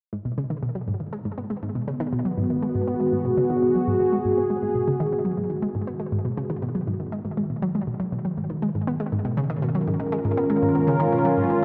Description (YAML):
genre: ambient, sequencer-driven space music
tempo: 120 BPM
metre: 4/4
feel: straight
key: G# dorian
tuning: A4 = 440 Hz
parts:
  - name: sweeping resonant pad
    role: sustained chords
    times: 0.1-11.6 s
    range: D#3 to A#4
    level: -26 LUFS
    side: equal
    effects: chorus
  - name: analog pluck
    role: riff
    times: 0.1-11.6 s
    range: G#2 to B3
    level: -28 LUFS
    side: equal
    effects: chorus, tape echo
room: wet cathedral reverb, RT60 5.2 s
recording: dreamy mix soaked in reverb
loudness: -25 LUFS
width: mono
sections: 0.1-11.6 A section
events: filter sweep on synth arpeggio sound 0.1-11.6; filter sweep on analog synth pad 0.1-11.6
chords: 0.1 G#m7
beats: | 0.12 0.62 1.12 1.62 | 2.12 2.62 3.12 3.62 | 4.12 4.62 5.12 5.62 | 6.12 6.62 7.12 7.62 | 8.12 8.62 9.12 9.62 | 10.12 10.62 11.12 11.62